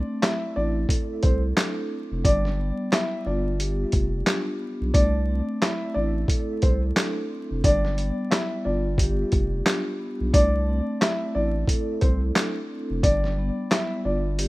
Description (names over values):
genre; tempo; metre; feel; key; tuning
hip hop, boom-bap hip-hop; 89 BPM; 4/4; swing 60% on 16ths; C major; A4 = 440 Hz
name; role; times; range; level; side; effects
dark upright piano; melody; 0.0-14.5 s; C4 to E5; -28 LUFS; equal; high-pass filter, low-pass filter, ping-pong delay
vibraphone with medium mallets; accompaniment; 0.0-14.5 s; G3 to A4; -29 LUFS; equal; cassette tape, high-pass filter, low-pass filter
saturated sub bass; bass; 0.0-14.5 s; F1 to C2; -25 LUFS; equal; none
boom bap sampler-style drum kit; drums; 0.2-14.5 s; handclaps, hi-hat, kick drum, snare drum; -23 LUFS; equal; none
room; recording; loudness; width
little or no reverb; rough home demo mix, vinyl crackle; -22 LUFS; side -19 dB against mid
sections
0.0-14.5 A section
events
none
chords
0.0 C69; 2.2 G7; 4.9 C69; 7.6 G7; 10.3 C69; 13.0 G7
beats
0.22 0.90 1.57 | 2.25 2.92 3.59 4.27 | 4.94 5.62 6.29 6.96 | 7.64 8.31 8.99 9.66 | 10.34 11.01 11.68 12.36 | 13.03 13.71 14.38